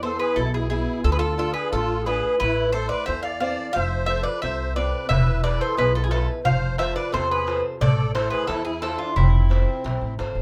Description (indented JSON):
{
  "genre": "greek folk, Greek bouzouki band",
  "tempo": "89 BPM",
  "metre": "2/4",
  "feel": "straight",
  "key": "unclear",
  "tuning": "A4 = 439 Hz",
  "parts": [
    { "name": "Greek bouzouki", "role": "melody", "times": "0.0-10.1 s", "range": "E4 to F5", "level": "-27 LUFS", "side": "equal", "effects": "none" },
    { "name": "musette accordion", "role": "second line", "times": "0.0-10.1 s", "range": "C4 to D5", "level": "-33 LUFS", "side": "equal", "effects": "none" },
    { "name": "picked old ladder-braced acoustic guitar", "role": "accompaniment", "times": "0.0-10.4 s", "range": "B2 to C5", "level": "-33 LUFS", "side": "equal", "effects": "none" },
    { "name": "upright bass", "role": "bass", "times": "0.0-10.4 s", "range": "E1 to E2", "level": "-27 LUFS", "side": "equal", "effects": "none" },
    { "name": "darbuka", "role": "percussion", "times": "5.1-10.4 s", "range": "none", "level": "-28 LUFS", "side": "equal", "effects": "none" }
  ],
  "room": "moderate small room reverb, RT60 0.5 s",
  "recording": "none",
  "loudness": "-23 LUFS",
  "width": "mono",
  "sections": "0.0-10.4 A section",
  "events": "none",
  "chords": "0.0 E; 1.0 Dm; 2.4 Am; 3.8 F; 5.1 E; 6.5 F; 7.8 Am; 9.2 F",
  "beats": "0.36 | 1.04 1.72 | 2.40 3.08 | 3.75 4.43 | 5.11 5.78 | 6.46 7.14 | 7.81 8.49 | 9.17 9.84"
}